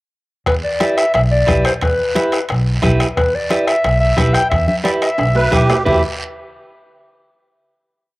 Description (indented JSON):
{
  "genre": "latin, cumbia",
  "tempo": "178 BPM",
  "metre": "4/4",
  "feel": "straight",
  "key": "E minor",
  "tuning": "A4 = 440 Hz",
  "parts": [
    { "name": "warm clarinet", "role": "melody", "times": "0.5-6.0 s", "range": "B4 to G5", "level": "-17 LUFS", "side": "left 1 dB", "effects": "cassette tape" },
    { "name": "upright bass", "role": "bass", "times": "0.5-6.0 s", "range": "B1 to E2", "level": "-18 LUFS", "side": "equal", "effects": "none" },
    { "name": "bombo", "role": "percussion", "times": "0.5-5.9 s", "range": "none", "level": "-22 LUFS", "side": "left 1 dB", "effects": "none" },
    { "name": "congas", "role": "percussion", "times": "0.5-5.9 s", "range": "none", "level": "-24 LUFS", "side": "left 1 dB", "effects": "none" },
    { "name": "guiro", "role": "percussion", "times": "0.5-5.9 s", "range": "none", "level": "-29 LUFS", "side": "right 2 dB", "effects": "none" },
    { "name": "timbales", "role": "percussion", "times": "0.5-5.9 s", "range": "none", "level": "-27 LUFS", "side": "right 3 dB", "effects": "none" },
    { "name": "clean electric guitar", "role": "accompaniment", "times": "0.8-6.0 s", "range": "E4 to B4", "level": "-20 LUFS", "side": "right 2 dB", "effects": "cassette tape" },
    { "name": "musette accordion", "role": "second line", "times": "5.4-6.0 s", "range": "G4 to B4", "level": "-20 LUFS", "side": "right 2 dB", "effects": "cassette tape" }
  ],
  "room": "moderate spring reverb, RT60 2.3 s",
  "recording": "home recording on cassette",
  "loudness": "-13 LUFS",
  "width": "side -20 dB against mid",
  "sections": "0.5-5.9 A section; 5.9-7.2 final chord",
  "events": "drum fill 5.2-5.9",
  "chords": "0.5 Em"
}